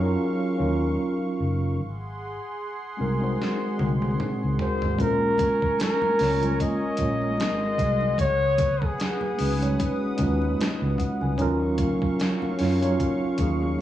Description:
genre	R&B, neo-soul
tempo	75 BPM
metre	4/4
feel	swing 56% on 16ths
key	Eb minor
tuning	A4 = 438 Hz
part	mellow tine electric piano	accompaniment	0.0-13.8 s	F3 to Ab5	-26 LUFS	right 1 dB	medium stereo tremolo
part	warm analog pad	sustained chords	0.0-13.8 s	Gb3 to Eb6	-34 LUFS	right 1 dB	chorus
part	vintage muted fingered electric bass	bass	0.0-13.7 s	Gb1 to Gb2	-27 LUFS	equal	none
part	dusty soul sampler-style drum kit	drums	3.4-13.6 s	hi-hat, kick drum, snare drum, toms	-29 LUFS	equal	none
part	mellow flugelhorn	melody	4.6-10.4 s	Ab4 to Eb5	-25 LUFS	left 1 dB	none
part	congas	percussion	5.0-13.8 s	none	-37 LUFS	left 2 dB	none
room	light reverb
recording	worn, warbling old tape, cassette tape, warbly pitch drift, small room reverb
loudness	-22 LUFS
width	side -12 dB against mid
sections	0.0-13.8 A section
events	drum fill 3.4-5.0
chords	0.0 Ebm9; 1.8 Ab7; 5.0 Bbm7; 7.4 Ab7; 8.2 Db9sus4; 11.4 Ebm9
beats	0.19 0.99 | 1.79 2.59 3.39 4.19 | 4.99 5.79 6.59 7.39 | 8.19 8.99 9.79 10.59 | 11.39 12.19 12.99 13.79

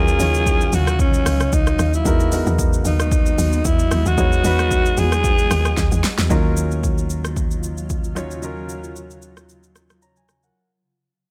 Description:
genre	amapiano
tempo	113 BPM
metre	4/4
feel	swing 55% on 16ths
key	Eb minor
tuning	A4 = 436 Hz
part	breathy alto saxophone	melody	0.0-6.0 s	Db4 to Ab4	-24 LUFS	equal	delay
part	warm grand piano	accompaniment	0.0-10.7 s	Gb3 to Bb5	-29 LUFS	equal	none
part	granular cloud pad	sustained chords	0.1-10.5 s	Db3 to F5	-32 LUFS	equal	built-in reverb, sidechain pumping
part	woody log drum bass	bass	0.0-6.3 s	Db2 to E2	-22 LUFS	equal	none
part	deep house drum kit	drums	0.1-10.5 s	hi-hat, kick drum, rim click, shaker, snare drum	-23 LUFS	equal	none
part	plucky analog bass	bass	6.3-10.5 s	Eb2	-27 LUFS	equal	none
room	little or no reverb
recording	none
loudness	-18 LUFS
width	mono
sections	0.0-6.3 A section; 6.3-10.6 B section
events	drum fill 5.8-6.3; fade-out 6.3-10.6; break 9.5-10.6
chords	0.0 Ebm9; 2.1 Emaj9#11; 6.3 Ebm9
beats	0.46 0.99 1.52 | 2.06 2.59 3.12 3.65 | 4.18 4.71 5.24 5.77 | 6.30 6.83 7.37 7.90 | 8.43 8.96 9.49 10.02

